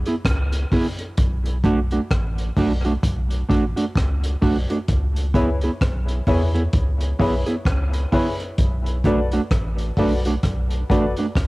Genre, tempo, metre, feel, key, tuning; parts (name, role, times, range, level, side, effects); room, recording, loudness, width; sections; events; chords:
dub reggae; 65 BPM; 4/4; swing 60% on 16ths; A4 = 440 Hz
soft dub sub bass; bass; 0.0-11.5 s; A1 to E2; -22 LUFS; equal
mellow electric guitar; accompaniment; 0.1-11.3 s; A3 to G#4; -24 LUFS; right 2 dB; dub echo
crunchy breakbeat drum kit; drums; 0.1-11.5 s; hi-hat, kick drum, rim click; -23 LUFS; equal; cassette tape
warm upright piano; stabs; 5.3-11.1 s; E4 to D5; -27 LUFS; left 3 dB; dub echo
light reverb, studio ambience; home recording on cassette; -18 LUFS; side -21 dB against mid
0.0-11.5 A section
break 0.0-4.9
0.0 C#m7; 1.2 Bm7; 4.9 C#m7; 8.6 Bm7